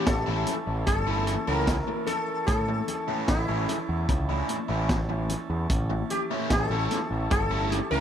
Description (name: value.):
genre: psychedelic rock.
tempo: 75 BPM.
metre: 4/4.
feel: straight.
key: A major.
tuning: A4 = 440 Hz.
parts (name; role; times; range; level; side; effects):
sitar; melody; 0.0-8.0 s; E4 to Bb4; -30 LUFS; left 2 dB; dub echo.
combo organ; sustained chords; 0.0-8.0 s; E3 to A5; -37 LUFS; right 6 dB; none.
overdriven electric guitar; riff; 0.0-8.0 s; E3 to E4; -32 LUFS; right 1 dB; phaser, dub echo.
growling picked electric bass; bass; 0.1-8.0 s; G1 to A2; -28 LUFS; equal; overdrive.
vintage drum kit; drums; 0.1-7.9 s; hi-hat, kick drum, snare drum; -29 LUFS; equal; dub echo.
congas; percussion; 0.5-7.9 s; none; -39 LUFS; left 14 dB; dub echo.
room: light reverb.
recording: echo-heavy mix.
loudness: -24 LUFS.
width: side -9 dB against mid.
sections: 0.0-8.0 A section.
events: none.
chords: 0.0 A.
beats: 0.07 0.88 1.68 | 2.48 3.29 4.09 4.90 | 5.70 6.51 7.31.